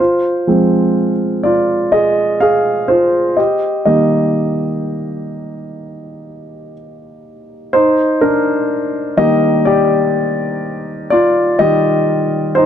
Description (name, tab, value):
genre	pop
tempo	62 BPM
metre	4/4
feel	straight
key	Eb major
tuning	A4 = 440 Hz
part	dark grand piano	solo	0.0-12.7 s	Eb3 to F5	-12 LUFS	equal	none
room	light reverb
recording	dark, warm production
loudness	-12 LUFS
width	side -9 dB against mid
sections	0.0-7.7 A section; 7.7-12.7 B section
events	grand piano solo 0.0-7.7, 7.7-12.7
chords	0.0 Fm; 3.4 Eb; 7.7 Ebmaj7